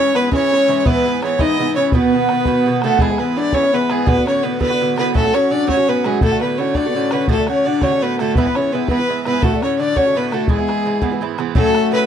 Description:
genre	celtic folk, Celtic jig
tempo	112 BPM (dotted quarters)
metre	6/8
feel	straight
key	E mixolydian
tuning	A4 = 440 Hz
part	rich fiddle	melody	0.0-12.1 s	G#4 to D#5	-19 LUFS	right 1 dB	none
part	warm alto saxophone	second line	0.0-12.1 s	G#3 to D#4	-19 LUFS	left 5 dB	none
part	Irish bouzouki	accompaniment	0.0-12.1 s	G#2 to F#4	-21 LUFS	right 12 dB	none
part	bodhran	percussion	0.2-11.8 s	none	-18 LUFS	left 1 dB	none
room	light reverb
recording	dry, close 1970s-style studio recording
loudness	-14 LUFS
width	side -8 dB against mid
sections	0.0-3.0 A section; 3.0-11.6 B section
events	none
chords	0.0 C#m; 0.9 E; 1.9 B; 3.0 E; 4.1 Bm7; 5.1 F#m; 6.2 D; 8.4 E; 9.4 D; 10.5 E; 11.6 F#m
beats	0.32 | 0.85 1.39 | 1.93 2.46 | 3.00 3.54 | 4.07 4.61 | 5.14 5.68 | 6.21 6.75 | 7.29 7.82 | 8.36 8.89 | 9.42 9.96 | 10.49 11.02 | 11.56

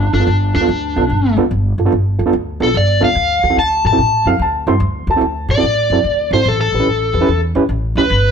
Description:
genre	electric blues shuffle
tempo	146 BPM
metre	4/4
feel	swing 66% on 8ths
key	unclear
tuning	A4 = 441 Hz
part	overdriven slide guitar	melody	0.0-8.3 s	D4 to A5	-15 LUFS	left 1 dB	none
part	upright bass	bass	0.0-8.3 s	G1 to A2	-17 LUFS	equal	none
part	overdriven reed electric piano	accompaniment	0.1-8.0 s	B3 to B4	-18 LUFS	right 4 dB	fast tremolo
part	warm upright piano	second line	4.3-5.5 s	F5 to C6	-19 LUFS	left 1 dB	none
room	moderate studio reverb, RT60 0.8 s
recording	band playing live in one room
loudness	-13 LUFS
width	side -7 dB against mid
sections	0.0-8.3 A section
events	none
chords	0.0 G9; 3.2 D9; 6.5 A9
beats	0.28 0.69 1.10 | 1.51 1.93 2.34 2.75 | 3.17 3.58 3.99 4.40 | 4.82 5.23 5.64 6.05 | 6.46 6.87 7.29 7.70 | 8.11

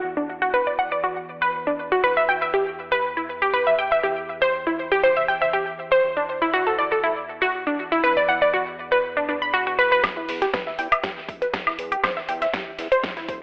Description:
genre	progressive house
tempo	120 BPM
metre	4/4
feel	straight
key	E minor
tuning	A4 = 440 Hz
part	fat analog bass	bass	0.0-13.4 s	E1 to E2	-41 LUFS	equal	sidechain pumping, high-pass filter
part	wide unison pluck	arpeggios	0.2-13.2 s	D4 to B5	-20 LUFS	equal	sidechain pumping, digital delay
part	dusty soul sampler-style drum kit	drums	10.0-13.4 s	hi-hat, snare drum	-34 LUFS	equal	high-pass filter on hats, high-pass filter on snare
part	electronic kick drum	drums	10.0-13.4 s	none	-32 LUFS	equal	none
part	pop drum kit	drums	10.0-13.4 s	hi-hat, snare drum, woodblock	-25 LUFS	equal	sidechain pumping on hats, sidechain pumping on perc
room	wet digital room reverb, RT60 1.1 s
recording	telephone sound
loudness	-19 LUFS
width	side -28 dB against mid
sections	0.0-10.0 A section; 10.0-13.4 B section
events	build-up 10.0-13.4; drum fill 10.0-13.4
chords	0.0 Bm/E (rootless); 2.0 Em; 4.0 C/E; 6.0 Dsus2/E; 8.0 Bm/E; 10.0 Em; 12.0 C/E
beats	| 0.04 0.54 1.04 1.54 | 2.04 2.54 3.04 3.54 | 4.04 4.54 5.04 5.54 | 6.04 6.54 7.04 7.54 | 8.04 8.54 9.04 9.54 | 10.04 10.54 11.04 11.54 | 12.04 12.54 13.04

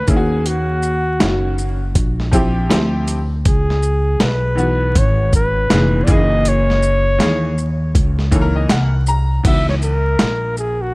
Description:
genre	hip hop, jazz-hop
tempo	80 BPM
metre	4/4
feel	swing 61% on 16ths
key	C# dorian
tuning	A4 = 441 Hz
part	mellow flugelhorn	melody	0.0-10.9 s	F#4 to E5	-20 LUFS	equal	tape echo
part	upright bass	bass	0.0-10.9 s	E#1 to D#2	-18 LUFS	equal	none
part	clear upright piano	accompaniment	0.1-9.9 s	A#2 to A#5	-20 LUFS	left 1 dB	none
part	dusty soul sampler-style drum kit	drums	0.1-10.8 s	crash cymbal, hi-hat, kick drum, shaker, snare drum	-17 LUFS	equal	overdrive
room	small room ambience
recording	vinyl crackle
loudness	-14 LUFS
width	side -24 dB against mid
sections	0.0-9.5 A section; 9.5-10.9 B section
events	upright piano fill 8.0-9.5; flugelhorn solo 9.5-10.9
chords	0.1 D#m7; 2.7 Dm11; 3.5 C#m11; 6.1 F#13; 9.5 C#m11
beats	| 0.45 1.20 1.95 2.70 | 3.45 4.20 4.95 5.70 | 6.45 7.20 7.95 8.70 | 9.45 10.20

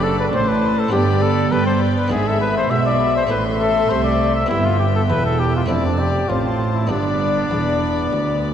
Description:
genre	classical, baroque-style concerto movement with solo episodes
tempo	100 BPM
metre	4/4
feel	straight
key	unclear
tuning	A4 = 440 Hz
part	clear trumpet	melody	0.0-8.5 s	D4 to E5	-21 LUFS	left 1 dB	none
part	warm chamber violin section	melody	0.0-8.5 s	G5 to C6	-32 LUFS	left 6 dB	none
part	warm chamber violin section	second line	0.0-8.5 s	C5 to E5	-24 LUFS	left 6 dB	none
part	buff-stop harpsichord	accompaniment	0.0-8.5 s	D2 to A4	-29 LUFS	equal	none
part	warm chamber viola section	accompaniment	0.0-8.5 s	G#3 to D4	-25 LUFS	right 3 dB	none
part	warm chamber cello section	bass	0.0-8.5 s	D2 to G3	-24 LUFS	right 2 dB	none
part	warm studio double bass section	bass	0.0-8.5 s	E1 to G2	-23 LUFS	right 3 dB	none
room	wet concert hall reverb, RT60 2.4 s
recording	dark, warm production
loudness	-16 LUFS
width	side -9 dB against mid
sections	0.0-8.5 A section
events	none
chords	0.0 D7/F#; 0.9 G; 2.1 E7/G#; 3.3 Am; 4.5 Em/G; 5.7 Dm7/F; 6.9 G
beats	0.33 0.93 1.52 | 2.12 2.71 3.31 3.91 | 4.50 5.10 5.70 6.30 | 6.90 7.51 8.12

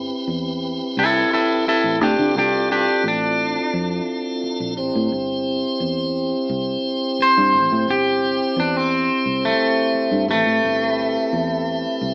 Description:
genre	straight-eighth soul blues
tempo	87 BPM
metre	4/4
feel	straight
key	A minor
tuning	A4 = 444 Hz
part	electric guitar at the edge of break-up	melody	0.0-12.1 s	A3 to A5	-18 LUFS	equal	spring reverb
part	tonewheel organ	accompaniment	0.0-12.1 s	C4 to C5	-22 LUFS	equal	slow rotary speaker
part	fingered electric bass	bass	0.0-12.1 s	G1 to D3	-25 LUFS	equal	none
room	moderate stone room reverb, RT60 1.0 s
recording	band playing live in one room, small speaker sound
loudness	-17 LUFS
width	side -29 dB against mid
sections	0.0-12.1 A section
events	clean electric guitar solo 0.0-12.1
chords	0.0 Am7; 2.0 Dm7; 4.8 Am7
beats	0.63 1.32 | 2.01 2.70 3.40 4.09 | 4.78 5.47 6.16 6.85 | 7.54 8.23 8.92 9.61 | 10.30 10.98 11.67

